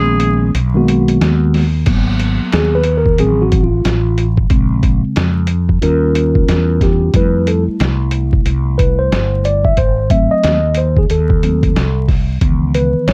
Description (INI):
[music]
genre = hip hop, jazz-hop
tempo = 91 BPM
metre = 4/4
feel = swing 62% on 16ths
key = unclear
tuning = A4 = 440 Hz
[part]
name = breathy tenor saxophone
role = melody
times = 0.0-0.6 s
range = G#4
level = -20 LUFS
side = equal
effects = plate reverb
[part]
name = mellow tine electric piano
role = accompaniment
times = 0.0-13.1 s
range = C#3 to E5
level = -18 LUFS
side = equal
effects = plate reverb
[part]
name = mellow fretless electric bass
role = bass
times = 0.0-13.1 s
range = G1 to E#2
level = -18 LUFS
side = equal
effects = none
[part]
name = lo-fi sampler-style drum kit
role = drums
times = 0.2-13.1 s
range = crash cymbal, hi-hat, kick drum, snare drum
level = -18 LUFS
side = equal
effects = none
[sound]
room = light reverb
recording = dark, warm production, vinyl crackle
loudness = -14 LUFS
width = mono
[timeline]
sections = 0.0-1.9 A section; 1.9-13.1 B section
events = break 0.0-1.9; tine electric piano solo 1.9-13.1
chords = 0.0 G#m9; 3.2 Adim7; 4.5 A#m7; 5.8 D#9; 7.1 Fmaj7; 9.8 G#7b9; 12.4 C#m9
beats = 0.55 1.21 | 1.87 2.53 3.19 3.85 | 4.50 5.17 5.82 6.48 | 7.14 7.80 8.46 9.12 | 9.78 10.44 11.10 11.76 | 12.42 13.08